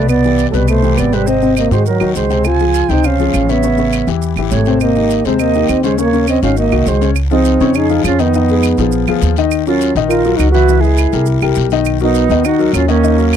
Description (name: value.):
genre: Afro-Cuban jazz.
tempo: 204 BPM.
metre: 4/4.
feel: straight.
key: Ab major, Db major from 7.2 s.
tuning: A4 = 440 Hz.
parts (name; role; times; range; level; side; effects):
mellow French horn; melody; 0.0-13.4 s; Gb3 to Gb4; -15 LUFS; right 1 dB; none.
breathy bright concert flute; second line; 0.0-13.4 s; Db4 to Ab5; -19 LUFS; right 14 dB; none.
warm grand piano; accompaniment; 0.0-13.4 s; B2 to Fb5; -17 LUFS; left 10 dB; none.
upright bass; bass; 0.0-13.4 s; Ab1 to Ab2; -16 LUFS; equal; none.
claves; percussion; 0.1-13.4 s; none; -23 LUFS; right 19 dB; none.
guiro; percussion; 0.1-13.4 s; none; -30 LUFS; left 17 dB; none.
maracas; percussion; 0.1-13.4 s; none; -32 LUFS; right 22 dB; none.
room: small room ambience.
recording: dry, close 1970s-style studio recording.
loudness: -11 LUFS.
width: side -9 dB against mid.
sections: 0.0-7.2 A section; 7.2-13.4 B section.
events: none.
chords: 0.1 Cmaj9; 1.3 Ab9; 2.5 Dbmaj7; 3.6 A9; 4.8 Abmaj9; 6.0 Ebm7; 6.6 Ab9; 7.2 Dbmaj9; 8.3 Fm7b5; 8.9 Bb7b9; 9.5 Ebm9; 10.7 Dbm7; 11.3 C7; 11.9 Cbmaj7.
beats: | 0.09 0.39 0.68 0.97 | 1.27 1.56 1.86 2.15 | 2.45 2.75 3.04 3.33 | 3.63 3.92 4.22 4.51 | 4.81 5.10 5.40 5.69 | 5.99 6.28 6.58 6.87 | 7.16 7.46 7.75 8.04 | 8.34 8.63 8.93 9.22 | 9.51 9.80 10.10 10.39 | 10.69 10.98 11.27 11.57 | 11.86 12.15 12.45 12.74 | 13.04 13.33.